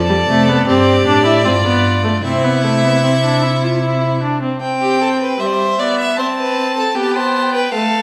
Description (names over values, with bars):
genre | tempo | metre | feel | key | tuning
classical, baroque-style fugue for string quartet | 77 BPM | 3/4 | straight | C major | A4 = 441 Hz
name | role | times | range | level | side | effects
rich violin | melody | 0.0-8.0 s | D5 to A5 | -22 LUFS | equal | none
rich violin | second line | 0.0-8.0 s | E4 to E5 | -21 LUFS | equal | none
rich cello | bass | 0.0-4.2 s | F2 to C3 | -20 LUFS | equal | none
clear viola | accompaniment | 0.1-8.0 s | G3 to F4 | -20 LUFS | equal | none
room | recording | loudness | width
wet recital hall reverb, RT60 1.4 s | recorded in a church or concert hall | -15 LUFS | mono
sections
0.0-4.6 A section; 4.6-8.0 B section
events
none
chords
0.0 Dm7/F; 0.7 C/G; 1.5 G7; 2.2 C; 6.2 Amadd9/C; 7.0 G7/B